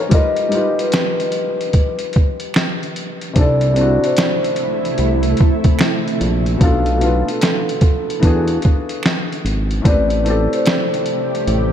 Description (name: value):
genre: lo-fi hip hop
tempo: 74 BPM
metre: 4/4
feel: swing 66% on 16ths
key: unclear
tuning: A4 = 440 Hz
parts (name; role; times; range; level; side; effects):
- felt-muted upright piano; accompaniment; 0.0-11.7 s; A2 to G#5; -22 LUFS; left 3 dB; low-pass filter
- vibraphone with soft mallets; melody; 0.1-11.7 s; A4 to F5; -21 LUFS; equal; low-pass filter, diffuse ambient delay
- lo-fi sampler-style drum kit; drums; 0.1-11.7 s; hi-hat, kick drum, snare drum; -18 LUFS; equal; overdrive, vintage 12-bit sampler grit
- finger snaps; percussion; 0.9-10.9 s; none; -33 LUFS; right 5 dB; none
- granular cloud pad; sustained chords; 4.3-11.7 s; C3 to G4; -24 LUFS; right 2 dB; built-in reverb, analog chorus, low-pass filter
- fat analog bass; bass; 3.4-11.7 s; G#1 to E2; -17 LUFS; right 1 dB; none
room: wet cathedral reverb, RT60 5.4 s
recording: dreamy mix soaked in reverb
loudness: -14 LUFS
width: side -9 dB against mid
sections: 0.0-11.7 A section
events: break 0.0-3.4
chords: 0.1 G7alt; 3.4 C6; 6.6 Bm7b5; 8.2 E7; 9.8 Am7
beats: | 0.12 0.93 1.74 2.55 | 3.36 4.17 4.98 5.79 | 6.60 7.41 8.22 9.03 | 9.85 10.65 11.47